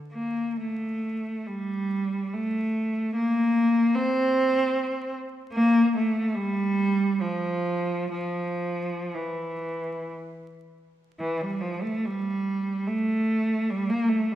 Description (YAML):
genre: classical, free, expressive piece for unaccompanied cello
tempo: 48-76 BPM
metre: 3/4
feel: rubato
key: unclear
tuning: A4 = 440 Hz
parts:
  - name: rich cello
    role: solo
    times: 0.1-14.4 s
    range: E3 to C4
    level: -24 LUFS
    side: equal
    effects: none
room: moderate concert hall reverb, RT60 2.1 s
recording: minimal, uncompressed stereo recording, vinyl crackle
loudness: -24 LUFS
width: side -12 dB against mid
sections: 0.0-11.2 A section; 11.2-14.4 A section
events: none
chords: none